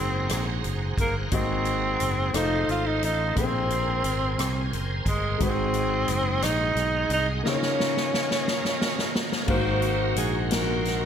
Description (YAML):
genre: slow gospel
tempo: 59 BPM (dotted quarters)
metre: 6/8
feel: straight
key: unclear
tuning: A4 = 440 Hz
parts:
  - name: breathy tenor saxophone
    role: melody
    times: 0.0-9.1 s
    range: Ab3 to F4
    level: -27 LUFS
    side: right 1 dB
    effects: none
  - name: clear grand piano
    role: accompaniment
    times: 0.0-11.1 s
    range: Ab2 to F5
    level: -30 LUFS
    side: left 3 dB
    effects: none
  - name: overdriven tonewheel organ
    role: sustained chords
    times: 0.0-11.1 s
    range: Gb4 to C6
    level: -33 LUFS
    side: right 3 dB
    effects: fast rotary speaker, chorus vibrato
  - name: fingered electric bass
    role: bass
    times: 0.0-11.1 s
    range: F1 to C2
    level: -29 LUFS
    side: right 1 dB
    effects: none
  - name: swinging big-band drum kit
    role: drums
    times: 0.3-11.0 s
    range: crash cymbal, hi-hat, kick drum, rim click, snare drum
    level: -30 LUFS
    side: equal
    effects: none
  - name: warm saxophone section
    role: melody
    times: 9.5-11.1 s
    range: Eb4 to C5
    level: -27 LUFS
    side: equal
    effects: none
room: moderate concert hall reverb, RT60 2.1 s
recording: none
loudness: -23 LUFS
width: side -8 dB against mid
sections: 0.0-9.5 A section; 9.5-11.1 B section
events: drum fill 7.4-9.5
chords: 0.0 Ab9; 2.3 F7; 3.4 Bbsus2; 5.4 Ab7; 7.4 Db69; 9.5 Ab13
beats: 0.30 | 1.32 2.35 | 3.37 4.39 | 5.41 6.43 | 7.45 8.47 | 9.48 10.50